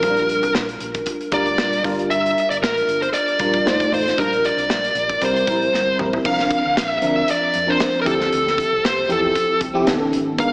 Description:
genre	polished 1980s jazz-funk pop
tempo	116 BPM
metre	4/4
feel	swing 54% on 16ths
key	unclear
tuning	A4 = 440 Hz
part	smooth overdriven lead guitar	melody	0.0-10.5 s	A4 to F5	-22 LUFS	equal	none
part	FM electric piano	accompaniment	0.0-10.5 s	D#3 to C5	-25 LUFS	equal	ensemble chorus, slapback echo
part	hollow-body short-scale fingered electric bass	bass	0.0-10.5 s	F1 to F2	-38 LUFS	equal	none
part	modern studio drum kit	drums	0.0-10.5 s	crash cymbal, hi-hat, kick drum, snare drum, toms	-28 LUFS	equal	none
room	wet lush hall reverb, RT60 2.0 s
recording	big arena sound, small speaker sound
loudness	-19 LUFS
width	mono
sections	0.0-6.2 A section; 6.2-10.5 B section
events	drum fill 5.7-6.2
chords	0.0 Bb6; 1.8 Gm7; 3.7 F7; 4.2 Bb6; 5.2 C7; 6.2 C9sus4; 8.1 Dm11; 9.9 B9

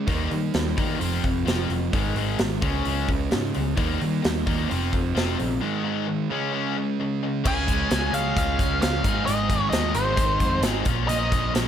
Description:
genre	classic rock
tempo	131 BPM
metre	4/4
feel	straight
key	unclear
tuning	A4 = 440 Hz
part	overdriven electric guitar	riff	0.0-11.7 s	Ab2 to Ab4	-28 LUFS	left 11 dB	none
part	sludgy distorted guitar	riff	0.0-11.7 s	F2 to F4	-28 LUFS	right 10 dB	overdrive
part	picked electric bass	bass	0.1-11.7 s	F1 to Eb3	-28 LUFS	equal	none
part	big rock drum kit	drums	0.1-11.7 s	crash cymbal, hi-hat, kick drum, snare drum	-26 LUFS	equal	none
part	octave-fuzz lead guitar	melody	7.5-11.5 s	C5 to Ab5	-26 LUFS	equal	distortion, tape echo
room	light reverb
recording	none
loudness	-21 LUFS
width	side -9 dB against mid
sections	0.0-7.4 A section; 7.4-11.7 B section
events	break 5.6-7.4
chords	0.1 Eb; 1.0 F5; 1.9 Ab5; 2.6 Db5; 3.8 Eb; 4.7 F5; 5.6 Ab5; 6.3 Db5; 7.4 Db; 9.0 Ab; 10.9 Bbm

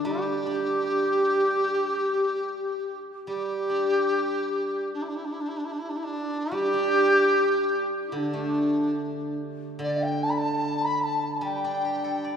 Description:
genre	chinese traditional, Chinese chamber ensemble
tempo	74 BPM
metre	2/4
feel	rubato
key	D zhi mode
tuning	A4 = 440 Hz
part	mellow large dizi	melody	0.0-12.4 s	D4 to B5	-25 LUFS	right 1 dB	none
part	xiao	second line	0.0-12.4 s	D4 to B5	-30 LUFS	left 4 dB	none
part	steel-string zither	accompaniment	0.0-12.4 s	D3 to D5	-32 LUFS	right 1 dB	none
room	wet cathedral reverb, RT60 4.7 s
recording	recorded in a church or concert hall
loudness	-24 LUFS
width	side -7 dB against mid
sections	0.0-9.8 A section; 9.8-12.4 B section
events	none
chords	none

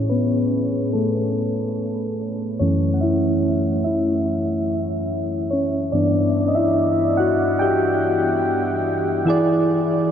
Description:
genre	R&B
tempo	72 BPM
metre	4/4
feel	straight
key	F# minor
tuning	A4 = 439 Hz
part	soft electric-piano-like synth keys	solo	0.0-10.1 s	F#2 to G5	-18 LUFS	equal	chorus
room	wet huge ambient reverb, RT60 7.5 s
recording	dreamy mix soaked in reverb, low-pass filter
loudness	-18 LUFS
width	side -8 dB against mid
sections	0.0-9.3 A section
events	synth keys solo 0.0-9.3; filter sweep 0.0-9.3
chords	0.0 Amaj7; 2.6 F#m7; 5.9 G6; 9.3 E7

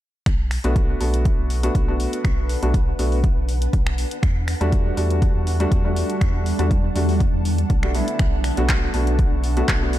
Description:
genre	deep house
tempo	121 BPM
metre	4/4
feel	swing 53% on 16ths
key	unclear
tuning	A4 = 439 Hz
part	round analog bass	bass	0.3-10.0 s	B1 to E2	-22 LUFS	equal	sidechain pumping
part	electronic kick drum	drums	0.3-9.8 s	none	-20 LUFS	equal	overdrive
part	punchy analog drum machine	drums	0.3-10.0 s	finger snaps, handclaps, hi-hat	-30 LUFS	equal	overdrive
part	granular cloud pad	texture	1.6-10.0 s	G3 to A5	-29 LUFS	right 1 dB	built-in reverb, sidechain pumping
part	felt-muted upright piano	stabs	0.6-10.0 s	G3 to F#4	-25 LUFS	left 1 dB	sidechain pumping, digital delay
room	digital ambience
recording	dark, warm production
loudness	-18 LUFS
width	side -14 dB against mid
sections	0.3-10.0 A section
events	none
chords	0.3 Bm7; 4.2 Em11; 8.2 Bm7

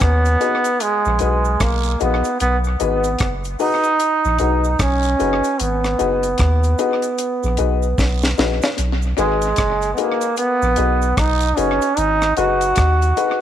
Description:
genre	roots reggae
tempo	75 BPM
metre	4/4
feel	swing 61% on 16ths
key	B major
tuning	A4 = 441 Hz
part	bright trombone	melody	0.0-13.4 s	G#3 to F#4	-18 LUFS	right 2 dB	dub echo
part	soft dub sub bass	bass	0.0-13.1 s	F#1 to D#2	-20 LUFS	equal	none
part	deep reggae drum kit	drums	0.0-13.4 s	hi-hat, kick drum, rim click, snare drum	-23 LUFS	equal	tape echo
part	cabasa and guiro	percussion	0.0-13.4 s	none	-36 LUFS	right 16 dB	none
part	dark upright piano	stabs	0.4-13.4 s	D#4 to B4	-23 LUFS	left 10 dB	none
room	light reverb, small room ambience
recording	1960s-style stereo with parts hard left and right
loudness	-15 LUFS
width	side -10 dB against mid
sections	0.0-8.8 A section; 8.8-13.4 B section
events	drum fill 8.0-8.8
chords	0.0 B6

